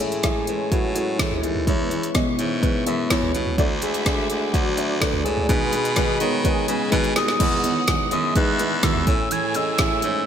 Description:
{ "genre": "piano-driven pop", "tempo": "126 BPM", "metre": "4/4", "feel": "straight", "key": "E major", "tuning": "A4 = 441 Hz", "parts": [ { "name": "soft octave-layered synth lead", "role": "melody", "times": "0.0-10.3 s", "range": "B3 to G#6", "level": "-26 LUFS", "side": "left 2 dB", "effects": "chorus" }, { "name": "dark upright piano", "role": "accompaniment", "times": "0.0-10.3 s", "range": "A2 to E5", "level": "-26 LUFS", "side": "left 3 dB", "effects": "wide subtle chorus" }, { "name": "warm studio string section", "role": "sustained chords", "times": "0.0-7.4 s", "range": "G#3 to D#6", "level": "-36 LUFS", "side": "left 1 dB", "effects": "none" }, { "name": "fingerpicked steel-string acoustic guitar", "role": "riff", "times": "0.0-10.3 s", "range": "E2 to G#4", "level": "-29 LUFS", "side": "right 10 dB", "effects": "none" }, { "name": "breathy baritone saxophone", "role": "bass", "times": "0.0-10.3 s", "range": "D2 to D#3", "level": "-27 LUFS", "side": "equal", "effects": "none" }, { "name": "deep house drum kit", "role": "drums", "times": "0.1-10.1 s", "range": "crash cymbal, hi-hat, kick drum, snare drum, toms", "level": "-23 LUFS", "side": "equal", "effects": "gated reverb" }, { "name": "warm studio violin section", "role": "second line", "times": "3.6-10.3 s", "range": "D4 to B5", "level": "-31 LUFS", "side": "right 1 dB", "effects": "none" } ], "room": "light reverb", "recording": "bright 1980s-style digital production", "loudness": "-19 LUFS", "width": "side -8 dB against mid", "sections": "0.0-7.4 A section; 7.4-10.3 B section", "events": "drum fill 6.9-7.4", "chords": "0.0 Amaj7; 1.7 E6; 3.6 D; 5.5 B6; 7.4 Emaj7; 9.1 Amaj7" }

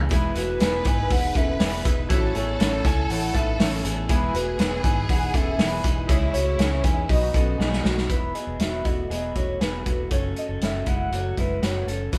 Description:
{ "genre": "jangly indie pop", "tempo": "120 BPM", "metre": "4/4", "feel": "straight", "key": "E major", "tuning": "A4 = 440 Hz", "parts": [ { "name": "picked twelve-string acoustic guitar", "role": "accompaniment", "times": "0.0-12.2 s", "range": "F#2 to E4", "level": "-36 LUFS", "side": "equal", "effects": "none" }, { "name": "electric guitar through a small old amp", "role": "arpeggios", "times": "0.0-12.2 s", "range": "G#3 to C#5", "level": "-33 LUFS", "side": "equal", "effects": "none" }, { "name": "vintage muted fingered electric bass", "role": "bass", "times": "0.0-12.2 s", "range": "E1 to E2", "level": "-30 LUFS", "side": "equal", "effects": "none" }, { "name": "warm studio violin section", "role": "second line", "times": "0.1-8.1 s", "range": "E4 to B4", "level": "-36 LUFS", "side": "equal", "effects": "none" }, { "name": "warm analog keys", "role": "accompaniment", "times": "0.1-8.1 s", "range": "D#4 to G#5", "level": "-38 LUFS", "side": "equal", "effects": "chorus, phaser" }, { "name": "loose indie drum kit", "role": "drums", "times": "0.1-12.2 s", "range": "hi-hat, kick drum, snare drum", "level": "-26 LUFS", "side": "equal", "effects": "none" }, { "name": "warbly nostalgic lead", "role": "melody", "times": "0.4-12.0 s", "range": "B4 to G#5", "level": "-32 LUFS", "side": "equal", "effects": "chorus, delay" } ], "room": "moderate stone room reverb, RT60 1.0 s", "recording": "band playing live in one room", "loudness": "-23 LUFS", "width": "mono", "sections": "0.0-8.1 A section; 8.1-12.2 B section", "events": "drum fill 7.6-8.1", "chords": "0.1 E; 2.1 A; 4.1 E; 6.1 C#m; 7.1 B; 8.1 Esus2; 10.1 F#m" }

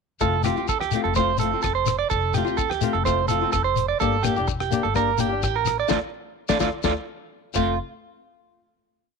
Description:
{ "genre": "highlife guitar band", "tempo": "126 BPM", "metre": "4/4", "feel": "straight", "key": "F major", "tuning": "A4 = 440 Hz", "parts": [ { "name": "flamenco guitar", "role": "accompaniment", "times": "0.2-7.7 s", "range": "F3 to G4", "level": "-26 LUFS", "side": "left 15 dB", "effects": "none" }, { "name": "electric guitar at the edge of break-up", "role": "arpeggios", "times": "0.2-7.8 s", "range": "F4 to D5", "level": "-23 LUFS", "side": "right 12 dB", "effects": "slapback echo" }, { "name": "upright bass", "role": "bass", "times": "0.2-7.8 s", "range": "E1 to D2", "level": "-29 LUFS", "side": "left 1 dB", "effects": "none" }, { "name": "cloth-damped thuddy drum kit", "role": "drums", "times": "0.2-7.7 s", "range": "crash cymbal, hi-hat, kick drum, rim click, snare drum", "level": "-29 LUFS", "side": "left 4 dB", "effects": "none" }, { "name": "shekere", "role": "percussion", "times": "0.2-7.8 s", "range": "none", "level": "-28 LUFS", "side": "left 10 dB", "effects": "none" } ], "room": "light reverb, small room reverb", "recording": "1960s-style stereo with parts hard left and right", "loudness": "-20 LUFS", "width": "side -5 dB against mid", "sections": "0.2-7.8 groove; 7.8-9.2 final hit", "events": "band accent 5.9-7.8", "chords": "0.2 F; 4.0 Gm; 5.9 Dm; 7.6 F; 7.8 N.C." }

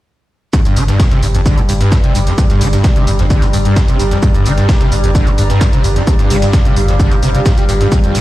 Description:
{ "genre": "driving peak-time techno", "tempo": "130 BPM", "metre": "4/4", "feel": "straight", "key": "G minor", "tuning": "A4 = 441 Hz", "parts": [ { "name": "screaming distorted acid line", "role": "riff", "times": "0.5-8.2 s", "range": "F2 to G3", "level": "-15 LUFS", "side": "equal", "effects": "distortion, ensemble chorus, sidechain pumping" }, { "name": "overtone-sweeping drone", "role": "drone", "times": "0.9-8.2 s", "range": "G2 to G3", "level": "-22 LUFS", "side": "left 1 dB", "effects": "chorus, built-in reverb, phaser, sidechain pumping" }, { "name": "dusty soul sampler-style drum kit", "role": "drums", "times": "0.5-8.2 s", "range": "hi-hat, shaker, snare drum", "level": "-28 LUFS", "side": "right 1 dB", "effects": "overdrive, high-pass filter on perc, high-pass filter on snare, high-pass filter on hats, high-pass filter on room" }, { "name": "electronic hi-hat", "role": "drums", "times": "0.5-8.2 s", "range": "none", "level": "-27 LUFS", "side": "equal", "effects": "overdrive, sidechain pumping on hats" }, { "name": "electronic kick drum", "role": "drums", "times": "0.5-8.0 s", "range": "none", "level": "-11 LUFS", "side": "equal", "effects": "overdrive" }, { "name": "granular cloud pad", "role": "texture", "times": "1.3-8.2 s", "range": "F4 to Bb5", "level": "-22 LUFS", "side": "right 2 dB", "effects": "built-in reverb, sidechain pumping" }, { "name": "saturated sub bass", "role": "bass", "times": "0.7-8.2 s", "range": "F1 to G1", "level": "-16 LUFS", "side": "equal", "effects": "overdrive, sidechain pumping, low-pass filter" } ], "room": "little or no reverb", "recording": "played on a big sound system in a bare room, stone room reverb", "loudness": "-10 LUFS", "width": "side -16 dB against mid", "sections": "0.5-8.2 A section", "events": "none", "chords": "0.5 Gm" }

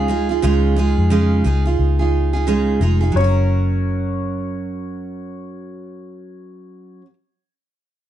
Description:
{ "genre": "pop", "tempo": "89 BPM", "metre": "4/4", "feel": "swing 60% on 16ths", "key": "F# major", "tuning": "A4 = 438 Hz", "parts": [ { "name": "warm upright piano", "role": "melody", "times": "0.0-7.0 s", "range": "C#5 to E#5", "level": "-28 LUFS", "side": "left 2 dB", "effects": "plate reverb" }, { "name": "picked steel-string acoustic guitar", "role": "accompaniment", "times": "0.0-7.1 s", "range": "C#3 to A#4", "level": "-20 LUFS", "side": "right 4 dB", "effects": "none" }, { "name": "vintage muted fingered electric bass", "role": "bass", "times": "0.0-7.0 s", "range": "E#1 to E#2", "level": "-18 LUFS", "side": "left 1 dB", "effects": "none" } ], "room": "little or no reverb", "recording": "nothing above 10.8 kHz", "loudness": "-15 LUFS", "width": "side -11 dB against mid", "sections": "0.0-3.1 A section; 3.1-5.9 B section", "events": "none", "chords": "0.0 C#add9; 3.1 F#" }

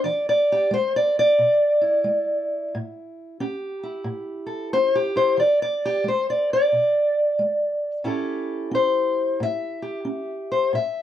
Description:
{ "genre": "acoustic country blues, solo or duo", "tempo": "90 BPM", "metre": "4/4", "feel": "swing 64% on 8ths", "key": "A mixolydian", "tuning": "A4 = 440 Hz", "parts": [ { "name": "fingerpicked steel-string acoustic guitar", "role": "solo", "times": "0.0-11.0 s", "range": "A2 to E5", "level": "-20 LUFS", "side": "equal", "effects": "none" } ], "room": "moderate studio reverb, RT60 0.6 s", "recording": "worn, warbling old tape, cassette tape, warbly pitch drift", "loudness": "-19 LUFS", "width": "side -11 dB against mid", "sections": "0.0-8.1 A section; 8.1-11.0 B section", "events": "steel-string acoustic guitar solo 8.1-11.0", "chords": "0.0 E7; 2.7 A7; 5.4 E7; 8.1 A7" }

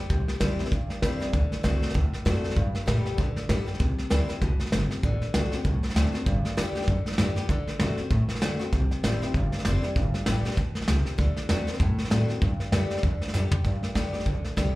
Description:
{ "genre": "rockabilly", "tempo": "195 BPM", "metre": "4/4", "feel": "swing 58% on 8ths", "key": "G major", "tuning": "A4 = 440 Hz", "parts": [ { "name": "picked steel-string acoustic guitar", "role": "accompaniment", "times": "0.0-14.8 s", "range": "G2 to G4", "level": "-31 LUFS", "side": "left 2 dB", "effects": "none" }, { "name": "upright bass", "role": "bass", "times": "0.1-14.7 s", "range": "F#1 to D3", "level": "-27 LUFS", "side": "equal", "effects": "none" }, { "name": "vintage brush drum kit", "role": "drums", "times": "0.1-14.7 s", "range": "hi-hat, kick drum, snare drum, toms", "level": "-27 LUFS", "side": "equal", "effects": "none" } ], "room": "small room ambience", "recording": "live gig heard through the venue's PA, club ambience", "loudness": "-24 LUFS", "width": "side -18 dB against mid", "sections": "0.0-3.8 A section; 3.8-13.6 B section; 13.6-14.8 A section", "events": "drum fill 13.3-13.6", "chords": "0.1 C; 1.3 D7; 2.6 G; 3.8 C; 5.0 D7; 6.3 G; 7.5 D7; 8.7 C; 10.0 G; 11.2 D7; 12.4 G" }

